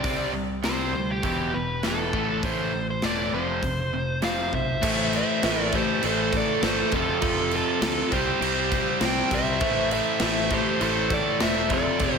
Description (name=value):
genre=hard rock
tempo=100 BPM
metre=4/4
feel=straight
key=A minor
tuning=A4 = 439 Hz
part: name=biting lead guitar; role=melody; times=0.0-12.2 s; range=G4 to G5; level=-28 LUFS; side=equal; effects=overdrive, slapback echo, analog delay
part: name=cranked stack guitar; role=riff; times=0.0-12.2 s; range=E2 to C4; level=-30 LUFS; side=right 11 dB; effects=overdrive, slapback echo
part: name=overdriven semi-hollow guitar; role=riff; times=0.0-12.2 s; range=E2 to C4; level=-29 LUFS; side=left 10 dB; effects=spring reverb, slapback echo
part: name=modern bright picked electric bass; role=bass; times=0.0-12.2 s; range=E1 to D2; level=-33 LUFS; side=equal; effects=none
part: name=big rock drum kit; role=drums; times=0.0-12.1 s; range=crash cymbal, hi-hat, kick drum, snare drum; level=-29 LUFS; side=equal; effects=none
part: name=biting lead guitar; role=second line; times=4.3-12.2 s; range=F4 to C5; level=-30 LUFS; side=right 4 dB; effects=overdrive, slapback echo
room=moderate lush hall reverb, RT60 1.8 s, small room ambience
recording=big arena sound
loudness=-22 LUFS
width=side -6 dB against mid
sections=0.0-4.8 A section; 4.8-12.2 B section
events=none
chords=0.0 C5; 1.2 E5; 2.1 A5; 3.3 F5; 4.8 Am; 6.9 F; 8.1 C5; 9.6 Am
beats=| 0.04 0.64 1.24 1.83 | 2.43 3.03 3.63 4.23 | 4.83 5.42 6.02 6.62 | 7.22 7.81 8.41 9.01 | 9.61 10.20 10.80 11.40 | 11.99